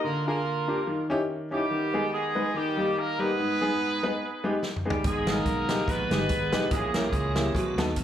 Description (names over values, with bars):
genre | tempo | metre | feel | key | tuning
uptempo gospel | 144 BPM | 4/4 | swing 56% on 8ths | G# harmonic minor | A4 = 440 Hz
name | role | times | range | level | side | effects
clear horn section | melody | 0.0-7.7 s | G3 to B4 | -29 LUFS | right 1 dB | slapback echo
clear baby grand piano | accompaniment | 0.0-8.0 s | G#2 to B4 | -28 LUFS | left 1 dB | slapback echo
natural country drum kit | drums | 4.6-8.0 s | hi-hat, kick drum, snare drum, toms | -30 LUFS | right 1 dB | none
tonewheel organ | sustained chords | 5.0-8.0 s | D3 to A#4 | -35 LUFS | right 3 dB | slow rotary speaker, chorus vibrato
slap bass | bass | 5.0-8.0 s | G1 to E#2 | -32 LUFS | equal | none
room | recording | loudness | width
light reverb, small room ambience | live gig heard through the venue's PA, club reverb | -24 LUFS | side -10 dB against mid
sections
0.0-8.0 A section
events
drum fill 4.6-5.0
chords
0.0 A#/D; 0.9 D#7b9; 1.7 G#m/D#; 2.5 D#; 3.4 G#m; 6.7 A#dim